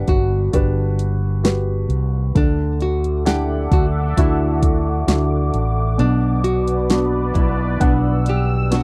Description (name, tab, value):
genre	pop ballad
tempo	66 BPM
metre	4/4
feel	straight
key	unclear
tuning	A4 = 441 Hz
part	nylon-string guitar	melody	0.0-8.8 s	F#3 to G4	-26 LUFS	equal	none
part	warm upright piano	accompaniment	0.0-8.8 s	B2 to F#5	-26 LUFS	equal	none
part	fretless electric bass	bass	0.0-8.8 s	G1 to D2	-22 LUFS	equal	none
part	deep house drum kit	drums	0.1-8.8 s	hi-hat, kick drum, snare drum	-20 LUFS	equal	none
part	sweeping resonant pad	sustained chords	3.0-8.8 s	A4 to E6	-29 LUFS	equal	chorus
room	little or no reverb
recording	dry, close 1970s-style studio recording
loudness	-18 LUFS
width	mono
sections	0.0-8.8 A section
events	none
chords	0.0 Gmaj7; 2.3 Dadd9; 6.0 Bm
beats	0.53 1.44 | 2.35 3.26 4.17 5.08 | 5.99 6.89 7.80 8.71